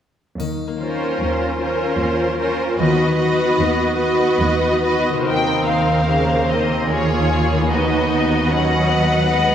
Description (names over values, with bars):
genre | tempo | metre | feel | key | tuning
cinematic, emotional film score for orchestra | 75 BPM | 3/4 | rubato | unclear | A4 = 441 Hz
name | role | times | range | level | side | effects
concert harp | arpeggios | 0.4-9.5 s | C3 to B4 | -24 LUFS | left 4 dB | none
dark symphonic cello section | bass | 0.4-9.5 s | Eb2 | -22 LUFS | right 2 dB | none
triangle | percussion | 0.4-2.0 s | none | -43 LUFS | left 3 dB | none
warm symphonic violin section | second line | 0.8-9.5 s | F#4 to D#5 | -21 LUFS | equal | none
rich studio viola section | accompaniment | 0.8-9.5 s | Db3 to F#4 | -21 LUFS | right 1 dB | none
rich symphonic violin section | melody | 5.3-9.5 s | Db5 to G5 | -21 LUFS | left 3 dB | none
room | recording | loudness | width
wet concert hall reverb, RT60 2.4 s | none | -16 LUFS | side -9 dB against mid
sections
0.4-5.3 A section; 5.3-9.5 B section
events
none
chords
0.4 Bbmadd9/Eb; 2.8 B/D#; 5.3 Bbmadd9/Eb; 7.7 B/D#